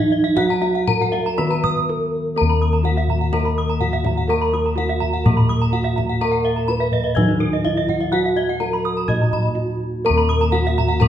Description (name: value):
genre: Balinese gamelan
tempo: 125 BPM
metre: 4/4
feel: straight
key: unclear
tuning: A4 = 440 Hz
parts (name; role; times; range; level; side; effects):
- gamelan-type bronze metallophone; melody; 0.0-11.1 s; Eb4 to Eb5; -24 LUFS; right 1 dB; none
- gamelan-type bronze metallophone; accompaniment; 0.0-11.1 s; Eb3 to Eb4; -28 LUFS; right 1 dB; none
- gamelan-type bronze metallophone; arpeggios; 0.0-10.9 s; Cb5-20c to Eb6; -26 LUFS; right 6 dB; none
- gamelan-type bossed gongs; bass; 0.0-11.1 s; Eb2 to Bb4-30c; -20 LUFS; left 1 dB; none
- kendang; percussion; 0.0-11.1 s; none; -24 LUFS; left 1 dB; none
- gamelan-type bronze metallophone; arpeggios; 0.1-11.1 s; Bb4-30c to Eb6; -26 LUFS; left 5 dB; none
room: moderate recital hall reverb, RT60 1.6 s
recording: nothing above 10.7 kHz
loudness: -17 LUFS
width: side -10 dB against mid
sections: 0.0-2.4 A section; 2.4-11.1 B section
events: break 1.6-2.4, 9.3-10.0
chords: none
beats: | 0.37 0.89 1.39 1.88 | 2.37 2.85 3.33 3.81 | 4.29 4.77 5.25 5.72 | 6.21 6.68 7.16 7.64 | 8.12 8.60 9.08 9.56 | 10.04 10.52 11.00